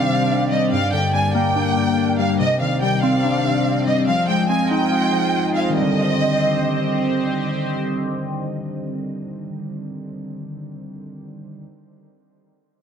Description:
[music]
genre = hip hop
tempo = 143 BPM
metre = 4/4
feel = half-time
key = C minor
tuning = A4 = 440 Hz
[part]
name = warm studio violin section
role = melody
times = 0.0-7.0 s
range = Eb5 to Ab5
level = -22 LUFS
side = right 1 dB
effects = dub echo
[part]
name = warbly lo-fi synth keys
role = accompaniment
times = 0.0-11.6 s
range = G2 to F4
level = -20 LUFS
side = left 1 dB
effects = chorus, dub echo
[part]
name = sweeping resonant pad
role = sustained chords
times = 0.0-9.9 s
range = Eb3 to Eb5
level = -27 LUFS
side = equal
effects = chorus
[sound]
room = wet spring reverb, RT60 1.5 s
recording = echo-heavy mix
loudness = -17 LUFS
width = side -7 dB against mid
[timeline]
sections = 0.0-5.8 A section; 5.8-9.1 B section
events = none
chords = 0.0 Cmadd9; 0.7 Gm; 2.4 Cmadd9; 4.1 Fm7; 5.8 Cmadd9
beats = 0.30 | 0.72 1.14 1.56 1.98 | 2.40 2.81 3.23 3.65 | 4.07 4.49 4.91 5.33 | 5.75 6.17 6.59 7.01 | 7.43 7.85 8.27 8.69

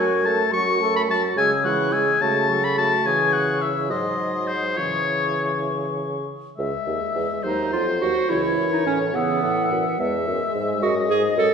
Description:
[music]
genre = quick classical-period movement for wind quintet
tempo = 71 BPM (dotted quarters)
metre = 6/8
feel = rubato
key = C# minor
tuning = A4 = 440 Hz
[part]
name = concert flute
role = melody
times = 0.0-11.5 s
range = C5 to E6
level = -29 LUFS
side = left 6 dB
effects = none
[part]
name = clear oboe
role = second line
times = 0.0-11.5 s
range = B#4 to C#6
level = -24 LUFS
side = left 4 dB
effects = none
[part]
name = bright clarinet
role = accompaniment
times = 0.0-11.5 s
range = B3 to A4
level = -25 LUFS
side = right 4 dB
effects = none
[part]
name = mellow French horn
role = accompaniment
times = 0.0-11.5 s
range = E3 to A3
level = -29 LUFS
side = equal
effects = none
[part]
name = mellow bassoon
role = bass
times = 0.0-11.5 s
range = C#2 to C#3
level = -26 LUFS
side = right 2 dB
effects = none
[sound]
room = wet recital hall reverb, RT60 1.5 s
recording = heard from further back in the room, nothing above 10.9 kHz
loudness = -19 LUFS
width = side -6 dB against mid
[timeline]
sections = 0.0-6.6 A section; 6.6-11.5 A section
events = none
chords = 0.0 F#m; 1.4 C#m; 2.2 F#m/C#; 3.1 C#m; 3.9 G#7; 4.8 C#m; 7.4 Cdim/Eb; 8.3 C#m; 10.0 E; 10.8 F#m69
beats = 0.53 | 1.37 2.21 | 3.06 3.90 | 4.78 5.68 | 6.58 7.44 | 8.29 9.14 | 9.99 10.82

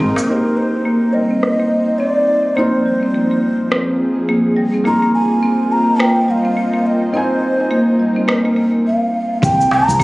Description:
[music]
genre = organic downtempo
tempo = 105 BPM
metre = 4/4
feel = swing 59% on 16ths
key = C minor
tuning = A4 = 439 Hz
[part]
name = felt-muted upright piano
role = accompaniment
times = 0.0-8.9 s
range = Ab3 to Ab5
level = -24 LUFS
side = equal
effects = sidechain pumping, tape echo
[part]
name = warm analog pad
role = sustained chords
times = 0.0-10.0 s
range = F3 to Eb5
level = -22 LUFS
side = equal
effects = chorus, sidechain pumping
[part]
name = marimba with soft mallets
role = arpeggios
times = 0.0-10.0 s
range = G3 to C4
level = -16 LUFS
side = equal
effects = low-pass filter, tape echo
[part]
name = woody fretless electric bass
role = bass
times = 0.0-0.1, 9.4-10.0 s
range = Ab1 to C2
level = -18 LUFS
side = equal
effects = sidechain pumping
[part]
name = darbuka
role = percussion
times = 0.0-0.3, 9.7-9.8 s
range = none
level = -24 LUFS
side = right 1 dB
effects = none
[part]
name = electronic cabasa and rim click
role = drums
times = 0.2-10.0 s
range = none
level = -20 LUFS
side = equal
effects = overdrive, low-pass filter on perc, low-pass filter on snare, low-pass filter on room
[part]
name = breathy mellow bansuri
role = melody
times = 0.3-10.0 s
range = Bb4 to Bb5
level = -18 LUFS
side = equal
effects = tape echo
[part]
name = electronic kick drum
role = drums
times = 9.4-10.0 s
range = none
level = -18 LUFS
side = equal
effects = overdrive
[sound]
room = light reverb, small room ambience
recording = recorded on a phone in the room, club reverb, compression, nothing above 10.7 kHz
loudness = -13 LUFS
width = side -21 dB against mid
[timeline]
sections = 0.3-9.4 A section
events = filter sweep on drum 0.3-9.4; break 8.9-9.4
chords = 0.3 Cm7; 2.6 Fm7; 4.9 Bbsus4; 9.4 C7(no3)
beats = | 0.29 0.86 1.43 2.00 | 2.57 3.15 3.72 4.29 | 4.86 5.43 6.00 6.57 | 7.14 7.72 8.29 8.86 | 9.43 10.00

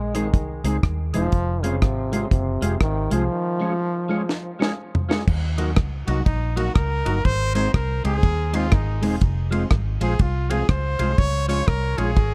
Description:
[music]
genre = ska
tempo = 122 BPM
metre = 4/4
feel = swing 62% on 8ths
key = Eb dorian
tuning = A4 = 441 Hz
[part]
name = clear trombone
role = melody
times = 0.0-4.8 s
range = C3 to Ab3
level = -29 LUFS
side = equal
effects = dub echo
[part]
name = vintage muted fingered electric bass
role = bass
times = 0.0-12.3 s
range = Fb1 to Eb2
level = -26 LUFS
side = equal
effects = none
[part]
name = electric guitar at the edge of break-up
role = accompaniment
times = 0.1-12.2 s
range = F3 to Ab4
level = -31 LUFS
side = equal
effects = subtle chorus, dub echo
[part]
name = percussive tonewheel organ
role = stabs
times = 0.1-12.1 s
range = Eb4 to Db5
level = -36 LUFS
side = equal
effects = overdrive, chorus vibrato, slow rotary speaker
[part]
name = deep reggae drum kit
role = drums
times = 0.1-12.3 s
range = crash cymbal, hi-hat, kick drum, ride cymbal, rim click, snare drum, toms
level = -23 LUFS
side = equal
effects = none
[part]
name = clear trumpet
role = melody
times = 6.1-12.3 s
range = Eb4 to Db5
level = -29 LUFS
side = equal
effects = dub echo
[sound]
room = little or no reverb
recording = dark, warm production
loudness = -22 LUFS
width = mono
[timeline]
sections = 0.0-5.3 A section; 5.3-12.3 B section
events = break 3.3-5.3; drum fill 4.3-5.3; trumpet solo 5.3-12.3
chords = 0.0 Ab; 1.3 Fm; 3.3 Db; 5.3 Ebm; 7.2 Ab; 9.2 Fm; 11.2 Db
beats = 0.34 0.83 | 1.33 1.82 2.32 2.81 | 3.30 3.80 4.29 4.79 | 5.28 5.77 6.26 6.76 | 7.25 7.74 8.23 8.73 | 9.22 9.71 10.20 10.70 | 11.19 11.68 12.17

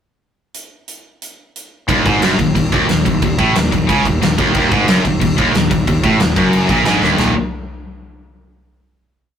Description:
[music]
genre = heavy metal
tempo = 181 BPM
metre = 4/4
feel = straight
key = Eb minor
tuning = A4 = 440 Hz
[part]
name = big rock drum kit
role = drums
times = 0.5-7.3 s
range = crash cymbal, hi-hat, kick drum, snare drum, toms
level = -18 LUFS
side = equal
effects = none
[part]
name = high-gain distorted guitar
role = riff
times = 1.9-7.3 s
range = Eb2 to Eb3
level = -16 LUFS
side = right 4 dB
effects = distortion
[part]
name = scooped high-gain guitar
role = riff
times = 1.9-7.3 s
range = Eb2 to Eb3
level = -17 LUFS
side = left 6 dB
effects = distortion
[part]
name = fuzz fingered electric bass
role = bass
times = 1.9-7.3 s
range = Eb1 to Db2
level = -21 LUFS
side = equal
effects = overdrive
[sound]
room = moderate studio reverb, RT60 0.5 s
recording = rough rehearsal-room recording, tube saturation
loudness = -12 LUFS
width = side -8 dB against mid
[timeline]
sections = 0.5-1.9 pickup bar; 1.9-7.2 riff; 7.2-8.5 final chord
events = drum fill 7.0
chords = 0.5 N.C.; 1.9 Ebm; 7.2 Eb5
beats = | 0.54 0.87 1.21 1.55 | 1.88 2.22 2.55 2.89 | 3.22 3.55 3.89 4.22 | 4.55 4.88 5.21 5.54 | 5.87 6.19 6.52 6.85 | 7.18

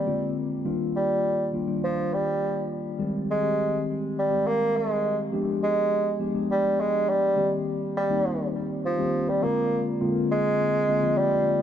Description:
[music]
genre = pop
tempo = 103 BPM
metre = 4/4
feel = straight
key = Eb major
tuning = A4 = 440 Hz
[part]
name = mellow bassoon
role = melody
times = 0.0-11.6 s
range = F3 to Bb3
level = -25 LUFS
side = right 1 dB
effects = none
[part]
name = mellow tine electric piano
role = accompaniment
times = 0.0-11.6 s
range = D3 to G4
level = -27 LUFS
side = left 2 dB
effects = slow stereo tremolo, wide subtle chorus
[sound]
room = moderate plate reverb, RT60 2.9 s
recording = dark, warm production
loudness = -23 LUFS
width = side -9 dB against mid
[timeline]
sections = 0.0-11.6 A section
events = none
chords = 0.1 Bb9; 0.7 Ebmaj9; 3.0 Abmaj7; 5.3 G7b9; 7.4 Cm7; 9.4 Bb9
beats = 0.07 | 0.66 1.24 1.82 2.41 | 2.99 3.58 4.16 4.74 | 5.33 5.91 6.50 7.08 | 7.67 8.25 8.84 9.42 | 10.01 10.59 11.18

